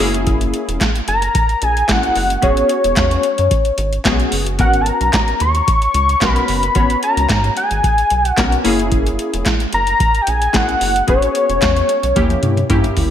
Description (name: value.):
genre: early-eighties boogie funk.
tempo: 111 BPM.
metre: 4/4.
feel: straight.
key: unclear.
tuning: A4 = 440 Hz.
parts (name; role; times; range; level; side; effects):
funky polysynth comp; accompaniment; 0.0-13.1 s; A#3 to C#5; -20 LUFS; left 3 dB; chorus, slapback echo.
rubbery square bass; bass; 0.0-13.1 s; E1 to G#2; -20 LUFS; equal; none.
booming analog drum machine; drums; 0.0-13.1 s; handclaps, hi-hat, kick drum, snare drum, toms; -18 LUFS; equal; none.
fat analog lead; melody; 1.1-12.7 s; C#5 to C#6; -16 LUFS; left 1 dB; chorus, slapback echo.
room: moderate lush hall reverb, RT60 1.5 s, digital ambience.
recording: big arena sound.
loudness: -13 LUFS.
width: side -9 dB against mid.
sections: 0.0-13.1 A section.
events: drum fill 12.2-13.1.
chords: 0.0 F#9; 2.4 E69; 4.6 G#m11; 8.6 F#9; 11.1 E69; 12.2 D#7b9.